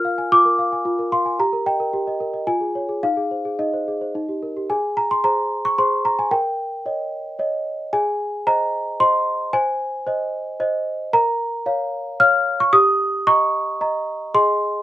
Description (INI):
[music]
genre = classical, lullaby for celesta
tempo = 112 BPM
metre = 3/4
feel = straight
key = Ab major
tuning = A4 = 440 Hz
[part]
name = worn celesta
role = solo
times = 0.0-14.8 s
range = Eb4 to F6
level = -18 LUFS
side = equal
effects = none
[sound]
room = light reverb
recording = minimal, uncompressed stereo recording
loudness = -18 LUFS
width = side -14 dB against mid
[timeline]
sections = 0.0-4.7 A section; 4.7-14.8 B section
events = none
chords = 0.0 Bb7/F; 1.4 Eb/G; 2.5 Db/F; 3.0 Ab/Eb; 4.1 Eb; 4.7 Ab; 6.3 Eb7/Bb; 7.9 Ab; 9.5 Ab/C; 11.1 Bbm; 12.7 Eb7/G